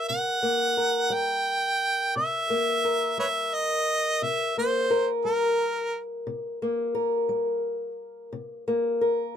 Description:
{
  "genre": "acoustic country blues, solo or duo",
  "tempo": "58 BPM (dotted quarters)",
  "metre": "12/8",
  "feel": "straight",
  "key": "C mixolydian",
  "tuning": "A4 = 440 Hz",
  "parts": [
    { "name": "clear harmonica", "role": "melody", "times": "0.0-6.0 s", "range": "Bb4 to G5", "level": "-25 LUFS", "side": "right 1 dB", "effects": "none" },
    { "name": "fingerpicked old ladder-braced acoustic guitar", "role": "accompaniment", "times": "0.0-9.4 s", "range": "C3 to Bb4", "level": "-27 LUFS", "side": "left 2 dB", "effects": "none" }
  ],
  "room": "light reverb",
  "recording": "close, detailed microphones",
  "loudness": "-23 LUFS",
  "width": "side -9 dB against mid",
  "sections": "0.0-9.4 A section",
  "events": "none",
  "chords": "0.0 C7(no3)"
}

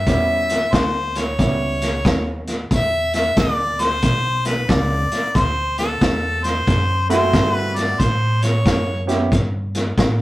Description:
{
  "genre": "electric blues shuffle",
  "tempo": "91 BPM",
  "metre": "4/4",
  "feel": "swing 64% on 8ths",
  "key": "unclear",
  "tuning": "A4 = 440 Hz",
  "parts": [
    { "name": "bright harmonica", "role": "melody", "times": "0.0-9.1 s", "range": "A4 to E5", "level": "-21 LUFS", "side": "left 1 dB", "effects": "overdrive" },
    { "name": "upright bass", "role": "bass", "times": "0.0-10.2 s", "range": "B1 to A2", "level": "-23 LUFS", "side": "equal", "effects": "none" },
    { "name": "bright upright piano", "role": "accompaniment", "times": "0.1-1.8, 7.1-9.3 s", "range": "G3 to G4", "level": "-22 LUFS", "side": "right 2 dB", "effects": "none" },
    { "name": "vintage drum kit", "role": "drums", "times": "0.1-10.2 s", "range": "hi-hat, kick drum, snare drum", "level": "-20 LUFS", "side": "equal", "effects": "none" }
  ],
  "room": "moderate studio reverb, RT60 0.5 s",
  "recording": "rough rehearsal-room recording, tube saturation",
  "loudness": "-16 LUFS",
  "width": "side -17 dB against mid",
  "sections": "0.0-10.2 A section",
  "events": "none",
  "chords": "0.0 A7 (rootless); 2.7 E5; 5.3 D7; 8.0 A7"
}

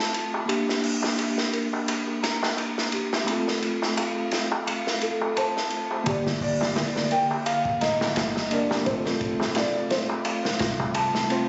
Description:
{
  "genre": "trip hop",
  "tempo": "86 BPM",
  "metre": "4/4",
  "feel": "swing 57% on 16ths",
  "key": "G minor",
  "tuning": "A4 = 440 Hz",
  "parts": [
    { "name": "mellow tine electric piano", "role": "accompaniment", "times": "0.0-11.5 s", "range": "D3 to C5", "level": "-31 LUFS", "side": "equal", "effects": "tremolo, vintage 12-bit sampler grit, tape echo" },
    { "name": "worn celesta", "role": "arpeggios", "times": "0.0-11.5 s", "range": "G4 to Bb5", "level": "-35 LUFS", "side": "equal", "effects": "low-pass filter, tape echo" },
    { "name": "crunchy breakbeat drum kit", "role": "drums", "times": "0.0-11.5 s", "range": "hi-hat, kick drum, ride cymbal, snare drum", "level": "-30 LUFS", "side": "equal", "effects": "high-pass filter on kick, high-pass filter on cymbals, high-pass filter on hats, high-pass filter on snare, high-pass filter on room" },
    { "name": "darbuka", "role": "percussion", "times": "0.3-11.3 s", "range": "none", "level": "-35 LUFS", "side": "equal", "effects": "none" },
    { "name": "felt-muted upright piano", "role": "melody", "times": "5.0-11.3 s", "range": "A4 to G5", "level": "-30 LUFS", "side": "equal", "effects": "tape echo" },
    { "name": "soft 808-style bass", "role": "bass", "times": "6.1-11.5 s", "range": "D1 to C2", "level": "-41 LUFS", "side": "equal", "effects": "none" }
  ],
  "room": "moderate echo chamber reverb, RT60 2.2 s",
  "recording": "recorded on a phone in the room, studio reverb, compression, nothing above 7.9 kHz",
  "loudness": "-26 LUFS",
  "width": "mono",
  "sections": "0.0-6.1 A section; 6.1-11.5 B section",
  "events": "filter sweep on celesta 0.0-6.1",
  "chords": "0.5 Gm; 3.3 F; 6.1 Gm; 8.9 F"
}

